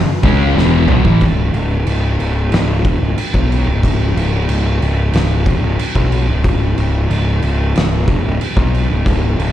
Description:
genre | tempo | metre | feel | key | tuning
stoner and doom metal | 92 BPM | 4/4 | straight | unclear | A4 = 440 Hz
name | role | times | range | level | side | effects
fuzz picked electric bass | bass | 0.0-9.5 s | C#1 to C#2 | -15 LUFS | equal | overdrive
crunchy overdriven guitar | riff | 0.2-1.2 s | E2 to C#4 | -19 LUFS | left 2 dB | none
thick fuzz guitar | riff | 0.2-1.2 s | E2 to C#4 | -20 LUFS | left 9 dB | distortion
thick fuzz guitar | riff | 0.2-1.2 s | E2 to C#4 | -18 LUFS | right 10 dB | distortion, slapback echo
oversized low-tuned drum kit | drums | 0.2-9.5 s | crash cymbal, kick drum, snare drum, toms | -18 LUFS | equal | none
room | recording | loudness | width
small room ambience | live gig heard through the venue's PA, club reverb | -12 LUFS | side -12 dB against mid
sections
0.0-1.2 A section; 1.2-9.5 B section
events
drum fill 0.6-1.2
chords
0.0 F#5; 1.2 N.C.

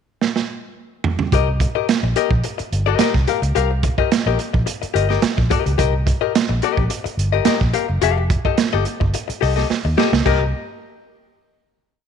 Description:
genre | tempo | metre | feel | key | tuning
funk | 108 BPM | 4/4 | straight | C dorian | A4 = 440 Hz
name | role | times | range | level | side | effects
crunchy breakbeat drum kit | drums | 0.2-10.4 s | crash cymbal, hi-hat, kick drum, snare drum, toms | -20 LUFS | right 4 dB | none
archtop guitar, miked and amplified | accompaniment | 1.3-10.4 s | G4 to F5 | -21 LUFS | left 14 dB | none
vintage muted fingered electric bass | bass | 1.3-10.5 s | F1 to Eb2 | -20 LUFS | equal | none
room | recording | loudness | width
light reverb, small room ambience | 1960s-style stereo | -16 LUFS | side -7 dB against mid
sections
0.0-1.3 pickup bar; 1.3-10.3 groove; 10.3-12.1 final chord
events
drum fill 0.2-1.3, 9.7-10.3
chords
0.0 N.C.; 1.3 Cm7; 8.0 F9; 10.3 Cm7

